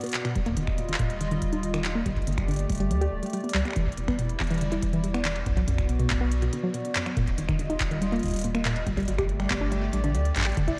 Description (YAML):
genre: IDM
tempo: 141 BPM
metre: 4/4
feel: straight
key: unclear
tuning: A4 = 439 Hz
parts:
  - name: hollow soft pad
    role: sustained chords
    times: 0.0-10.8 s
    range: G3 to D#5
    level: -36 LUFS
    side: equal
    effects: chorus
  - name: warbly dusty pluck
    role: arpeggios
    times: 0.0-10.7 s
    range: F#2 to G4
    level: -32 LUFS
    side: equal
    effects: chorus, tape echo
  - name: organic electronic drum kit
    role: drums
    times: 0.0-10.8 s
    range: finger snaps, handclaps, hi-hat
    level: -36 LUFS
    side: equal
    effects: tape echo
  - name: warm sub bass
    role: bass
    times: 0.4-10.7 s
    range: D1 to D2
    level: -32 LUFS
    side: equal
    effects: none
  - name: electronic kick drum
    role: drums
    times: 0.4-10.8 s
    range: none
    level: -33 LUFS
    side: equal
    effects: none
room: light reverb, digital ambience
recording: worn, warbling old tape, cassette tape, warbly pitch drift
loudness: -27 LUFS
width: mono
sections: 0.0-10.8 A section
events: filter sweep on synth arpeggio sound 0.0-10.8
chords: 0.4 D#add9; 2.1 Gsus2; 3.8 Em7; 5.5 Bm; 7.2 D#add9; 8.9 Gsus2